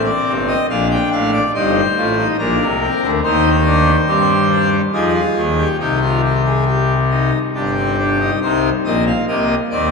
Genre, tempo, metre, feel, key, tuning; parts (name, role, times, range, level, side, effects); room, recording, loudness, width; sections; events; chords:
classical, baroque-style 3-part fugue for pipe organ; 70 BPM; 3/4; straight; C minor from 3.2 s; A4 = 439 Hz
pipe organ, full organ; solo; 0.0-9.9 s; G1 to G5; -14 LUFS; left 1 dB
wet cathedral reverb, RT60 4.8 s; in a vast, echoing space; -14 LUFS; side -4 dB against mid
0.0-8.4 A section; 8.4-9.9 B section
0.0 Gsus24; 0.7 Bbmaj7; 2.4 Bbadd9; 3.2 Cm/Eb; 4.9 Fm; 5.8 Cm; 7.6 G5; 8.4 Cm